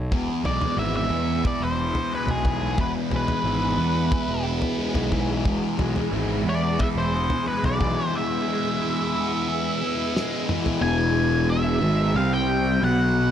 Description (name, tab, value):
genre	psychedelic rock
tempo	90 BPM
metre	4/4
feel	straight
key	unclear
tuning	A4 = 440 Hz
part	fuzz picked electric bass	bass	0.0-13.3 s	E1 to E2	-26 LUFS	equal	overdrive
part	ensemble organ-string	sustained chords	0.1-13.3 s	C3 to B5	-33 LUFS	right 3 dB	ensemble chorus
part	thick fuzz guitar	riff	0.1-13.3 s	E2 to E4	-24 LUFS	left 1 dB	distortion, phaser
part	damped 70s drum kit	drums	0.1-10.8 s	kick drum, snare drum, toms	-27 LUFS	equal	none
part	octave-fuzz lead guitar	melody	0.5-13.3 s	G#4 to G#5	-27 LUFS	equal	distortion, tape echo
room	light reverb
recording	none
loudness	-21 LUFS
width	side -9 dB against mid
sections	0.0-10.8 A section; 10.8-13.3 B section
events	drum fill 10.2-10.8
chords	0.0 E; 12.2 C5